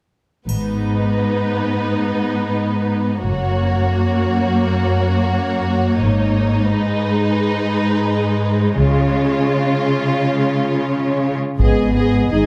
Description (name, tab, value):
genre	cinematic, epic orchestral film score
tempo	free time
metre	none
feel	none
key	G# dorian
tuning	A4 = 440 Hz
part	warm symphonic violin section	melody	0.5-12.5 s	B4 to D#5	-29 LUFS	equal	none
part	rich symphonic violin section	second line	0.5-12.5 s	D#4 to G#4	-26 LUFS	equal	none
part	warm symphonic viola section	accompaniment	0.5-12.5 s	G#3 to G#4	-25 LUFS	equal	none
part	dark symphonic double bass section	bass	0.5-12.5 s	F#1 to C#2	-24 LUFS	equal	none
part	warm studio cello section	bass	0.5-12.5 s	F#2 to C#3	-21 LUFS	equal	none
part	triangle	percussion	0.5-1.8 s	none	-40 LUFS	equal	none
part	mellow French horn section	sustained chords	11.6-12.5 s	B3 to D#4	-20 LUFS	equal	none
part	solo taiko drums	drums	11.6-12.5 s	none	-21 LUFS	equal	none
room	moderate scoring stage reverb, RT60 1.5 s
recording	close, detailed microphones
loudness	-18 LUFS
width	mono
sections	0.5-11.6 A section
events	none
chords	0.5 G#m; 3.3 F#; 6.0 G#m; 8.8 C#; 11.6 G#m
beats	free time